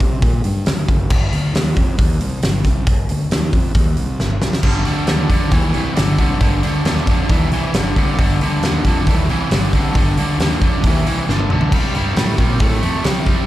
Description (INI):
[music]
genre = blues rock power trio and southern rock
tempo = 136 BPM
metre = 4/4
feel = straight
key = unclear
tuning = A4 = 439 Hz
[part]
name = fuzz fingered electric bass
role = bass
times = 0.0-13.5 s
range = F#1 to C3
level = -19 LUFS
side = equal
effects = overdrive
[part]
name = huge arena drum kit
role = drums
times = 0.0-13.4 s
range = crash cymbal, hi-hat, kick drum, snare drum, toms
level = -17 LUFS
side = equal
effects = none
[part]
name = biting overdriven guitar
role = riff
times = 4.6-13.5 s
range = G2 to A3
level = -19 LUFS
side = equal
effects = none
[sound]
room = small room ambience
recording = live gig heard through the venue's PA, club reverb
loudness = -14 LUFS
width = side -15 dB against mid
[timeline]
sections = 0.0-4.6 A section; 4.6-13.5 B section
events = drum fill 4.2-4.6, 11.3-11.7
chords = 0.0 D7; 1.1 G5; 11.7 C5